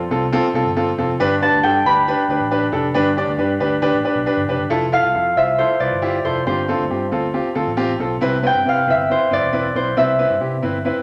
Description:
uptempo 1960s-style soul; 137 BPM; 4/4; straight; A4 = 440 Hz
concert harp; melody; 0.0-11.0 s; C5 to B5; -20 LUFS; equal
vintage muted picked electric bass; bass; 0.0-10.9 s; E1 to C3; -29 LUFS; equal
clear upright piano; accompaniment; 0.1-11.0 s; G2 to D5; -21 LUFS; equal
wet large studio reverb, RT60 1.3 s; -18 LUFS; mono
0.0-4.7 A section; 4.7-11.0 B section
0.0 F; 1.2 G; 4.7 Fmaj7; 6.5 G7sus4; 8.2 Cmaj7

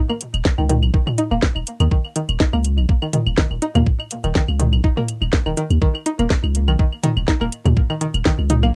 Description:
minimal techno; 123 BPM; 4/4; swing 54% on 16ths; A4 = 441 Hz
string-like resonator pluck; riff; 0.1-8.7 s; Eb3 to Eb4; -26 LUFS; equal; chorus, sidechain pumping, cassette tape, tape echo
electronic claves and toms; percussion; 0.1-8.7 s; -26 LUFS; equal; tape echo
garage drum kit; drums; 0.2-8.6 s; hi-hat, snare drum; -24 LUFS; equal
punchy sub bass; bass; 0.3-8.7 s; Eb1 to Eb2; -20 LUFS; equal; sidechain pumping
electronic kick drum; drums; 0.5-8.4 s; -20 LUFS; equal
light reverb; home recording on cassette, lossy compression artefacts; -19 LUFS; mono
0.0-8.8 A section

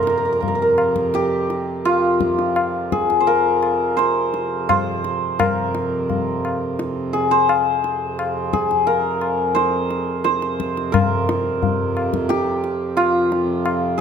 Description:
indian classical, Hindustani; 86 BPM; 4/4; straight; F raga bhimpalasi; A4 = 441 Hz
santur; melody; 0.0-14.0 s; F4 to D5; -19 LUFS; equal
hand-pumped harmonium; drone; 0.0-14.0 s; F2 to C3; -26 LUFS; right 3 dB
tabla; percussion; 0.1-13.9 s; -24 LUFS; left 5 dB
moderate recital hall reverb, RT60 1.4 s; close, detailed microphones; -17 LUFS; side -7 dB against mid
0.0-10.9 A section; 10.9-14.0 B section
speeding up 0.0-14.0

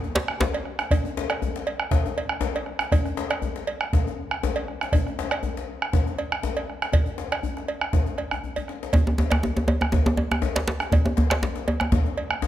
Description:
west african traditional, West African drum ensemble; 120 BPM; 4/4; swing 53% on 16ths
djembe; percussion; 0.0-12.5 s; -29 LUFS; left 4 dB
bombo; percussion; 0.2-12.4 s; -25 LUFS; right 1 dB
cowbell; percussion; 0.2-12.3 s; -31 LUFS; right 4 dB
djembe; percussion; 0.2-0.5, 8.9-12.0 s; -23 LUFS; equal
moderate recital hall reverb, RT60 1.7 s; close, detailed microphones; -22 LUFS; side -12 dB against mid
0.9-12.5 A section
drum fill 0.0-0.9, 8.3-8.9

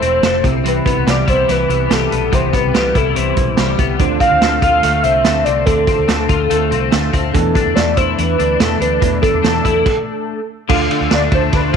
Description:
jangly indie pop; 143 BPM; 4/4; straight; A4 = 441 Hz
warm velvety synth lead; melody; 0.0-11.8 s; A4 to F5; -17 LUFS; right 1 dB; chorus, slapback echo
fingerpicked steel-string acoustic guitar; accompaniment; 0.0-11.8 s; E2 to F4; -24 LUFS; right 12 dB
reed electric piano; accompaniment; 0.0-11.8 s; C4 to C5; -27 LUFS; right 14 dB
twelve-string electric guitar; arpeggios; 0.0-11.8 s; E2 to F4; -18 LUFS; left 11 dB; ensemble chorus, slapback echo
vintage muted fingered electric bass; bass; 0.0-11.8 s; E1 to E2; -21 LUFS; equal
vintage drum kit; drums; 0.0-11.8 s; crash cymbal, hi-hat, kick drum, ride cymbal, snare drum; -18 LUFS; right 3 dB
light reverb, small room ambience; 1960s-style stereo with parts hard left and right; -12 LUFS; side -7 dB against mid
0.0-10.7 A section; 10.7-11.8 B section
stop 9.9-10.7
0.4 Cmaj7; 4.0 Dm7; 7.3 E7sus4; 10.7 Dm

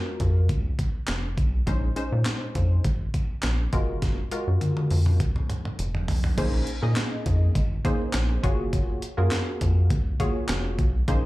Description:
early-eighties boogie funk; 102 BPM; 4/4; straight; A4 = 441 Hz
funky polysynth comp; accompaniment; 0.0-11.3 s; Ab3 to Eb5; -31 LUFS; equal; chorus, slapback echo
rubbery square bass; bass; 0.2-11.3 s; F1 to Bb2; -23 LUFS; equal
breakbeat sampler-style drum kit; drums; 0.2-11.2 s; crash cymbal, handclaps, hi-hat, kick drum, snare drum, toms; -27 LUFS; equal; overdrive
digital ambience; live gig heard through the venue's PA, club reverb; -22 LUFS; side -18 dB against mid
0.0-6.4 A section; 6.4-11.3 B section
drum fill 4.0-6.4
0.0 Gbmaj9; 1.7 Bbm11; 3.7 Gbmaj9; 6.4 Bbm11; 8.4 Gbmaj9

